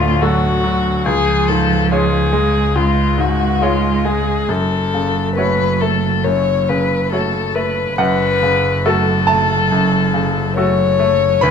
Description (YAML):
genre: neoclassical piano and strings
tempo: 70 BPM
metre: 4/4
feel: rubato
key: F# harmonic minor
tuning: A4 = 440 Hz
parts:
  - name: dark violin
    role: melody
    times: 0.0-11.5 s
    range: E#4 to C#5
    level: -17 LUFS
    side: left 5 dB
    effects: none
  - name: warm cello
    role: second line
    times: 0.0-11.5 s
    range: E#3 to A3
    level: -22 LUFS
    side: right 9 dB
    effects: none
  - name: bright grand piano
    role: accompaniment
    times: 0.0-11.5 s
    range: C#2 to B5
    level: -19 LUFS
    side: equal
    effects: none
  - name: warm double bass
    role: bass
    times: 0.0-11.5 s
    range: F#1 to D2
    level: -20 LUFS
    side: equal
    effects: none
room: moderate large studio reverb, RT60 1.3 s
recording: minimal, uncompressed stereo recording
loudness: -13 LUFS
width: side -7 dB against mid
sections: 0.0-8.0 A section; 8.0-11.5 A section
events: none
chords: 0.0 D; 1.1 C#; 4.5 F#m